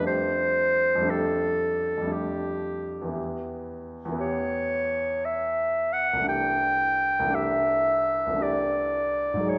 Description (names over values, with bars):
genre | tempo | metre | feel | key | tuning
classical, impressionist duo for clarinet and grand piano | 57 BPM | 3/4 | rubato | unclear | A4 = 439 Hz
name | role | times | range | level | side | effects
mellow clarinet | melody | 0.0-9.6 s | G4 to G5 | -26 LUFS | equal | none
warm grand piano | accompaniment | 0.0-9.6 s | C2 to Ab4 | -33 LUFS | equal | none
room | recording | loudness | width
wet recital hall reverb, RT60 1.6 s | none | -26 LUFS | mono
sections
0.0-9.6 A section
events
none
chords
0.1 F69; 3.2 Em6; 6.3 C69